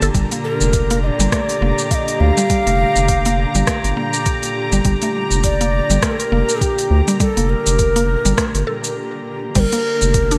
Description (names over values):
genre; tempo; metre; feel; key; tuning
organic downtempo; 102 BPM; 4/4; swing 58% on 16ths; G minor; A4 = 440 Hz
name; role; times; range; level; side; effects
breathy mellow Native American-style cedar flute; melody; 0.0-10.4 s; G4 to F5; -23 LUFS; equal; digital delay
dark studio string section; sustained chords; 0.0-10.4 s; Bb2 to Bb5; -26 LUFS; equal; sidechain pumping
mallet-like synth pluck; arpeggios; 0.0-10.4 s; G3 to A4; -25 LUFS; equal; chorus, cassette tape, digital delay
round analog bass; bass; 0.0-10.4 s; F1 to D2; -20 LUFS; equal; sidechain pumping
organic electronic drum kit; drums; 0.0-10.4 s; crash cymbal, hi-hat, rim click, shaker; -25 LUFS; equal; studio reverb, gated reverb
drifting glass-harmonics texture; texture; 0.8-9.0 s; G4 to A5; -30 LUFS; equal; chorus, built-in reverb
electronic kick drum; drums; 0.1-10.3 s; none; -22 LUFS; equal; studio reverb
room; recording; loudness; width
moderate lush hall reverb, RT60 2.2 s; bright 1980s-style digital production; -17 LUFS; mono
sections
0.0-9.6 A section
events
break 9.0-9.6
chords
0.0 Gmadd9